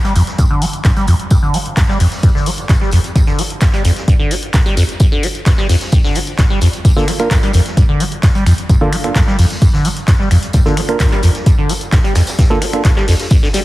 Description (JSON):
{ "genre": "acid house", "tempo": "130 BPM", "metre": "4/4", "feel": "straight", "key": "G minor", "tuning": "A4 = 439 Hz", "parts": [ { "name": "liquid acid bass", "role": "riff", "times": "0.0-13.6 s", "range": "F2 to G3", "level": "-15 LUFS", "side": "equal", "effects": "phaser, tube saturation, lush chorus, sidechain pumping, digital delay" }, { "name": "punchy analog drum machine", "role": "drums", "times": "0.0-13.6 s", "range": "finger snaps, handclaps, hi-hat", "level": "-23 LUFS", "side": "left 1 dB", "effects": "none" }, { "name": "street-band drum kit", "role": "drums", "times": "0.0-13.6 s", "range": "hi-hat, snare drum, tambourine", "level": "-29 LUFS", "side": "equal", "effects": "high-pass filter on hats, high-pass filter on snare, high-pass filter on perc, high-pass filter on room" }, { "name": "electronic kick drum", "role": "drums", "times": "0.4-13.4 s", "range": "none", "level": "-13 LUFS", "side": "equal", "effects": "none" }, { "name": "percussive organ stab", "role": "stabs", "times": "7.0-12.8 s", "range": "Bb3 to Bb4", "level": "-20 LUFS", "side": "right 2 dB", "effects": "chorus, digital delay" } ], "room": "light reverb, small room ambience", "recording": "heavily compressed radio sound", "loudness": "-11 LUFS", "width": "side -17 dB against mid", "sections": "0.0-13.6 A section", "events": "filter sweep on acid bass 0.0-13.6", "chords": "0.0 Gm7" }